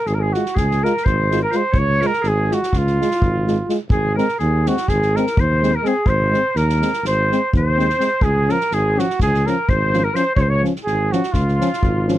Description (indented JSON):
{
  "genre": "balkan folk, Balkan brass band",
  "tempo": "251 BPM (eighths)",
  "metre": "9/8",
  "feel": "straight",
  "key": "Db major",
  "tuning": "A4 = 440 Hz",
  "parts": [
    { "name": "mellow trumpet", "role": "melody", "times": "0.0-12.2 s", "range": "F4 to Db5", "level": "-21 LUFS", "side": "right 4 dB", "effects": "none" },
    { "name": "bright clarinet", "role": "second line", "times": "0.0-12.2 s", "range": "F4 to Db5", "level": "-25 LUFS", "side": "left 8 dB", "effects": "none" },
    { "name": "mellow tuba", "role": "bass", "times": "0.1-12.2 s", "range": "Ab1 to Eb2", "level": "-20 LUFS", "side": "equal", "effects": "none" },
    { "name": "unplugged drum kit", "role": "percussion", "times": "0.1-12.1 s", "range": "kick drum, snare drum", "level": "-22 LUFS", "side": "equal", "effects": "none" },
    { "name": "warm euphonium", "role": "accompaniment", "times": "0.3-12.2 s", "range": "C4 to F4", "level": "-23 LUFS", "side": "left 6 dB", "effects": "none" },
    { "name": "warm euphonium", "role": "accompaniment", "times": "0.3-12.2 s", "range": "F3 to Ab3", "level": "-24 LUFS", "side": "right 5 dB", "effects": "none" }
  ],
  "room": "little or no reverb",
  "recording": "none",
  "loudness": "-16 LUFS",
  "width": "side -14 dB against mid",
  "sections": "0.0-12.2 A section",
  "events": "none",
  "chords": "0.0 Db; 3.9 Ab; 8.2 Db",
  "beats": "0.06 0.30 0.54 0.78 1.02 1.26 1.50 | 1.74 1.98 2.22 2.46 2.70 2.94 3.18 3.42 3.66 | 3.90 4.14 4.38 4.62 4.86 5.10 5.34 5.58 5.82 | 6.06 6.30 6.54 6.78 7.01 7.25 7.49 7.73 7.97 | 8.21 8.45 8.69 8.93 9.17 9.40 9.64 9.88 10.12 | 10.36 10.60 10.84 11.08 11.32 11.55 11.79 12.03"
}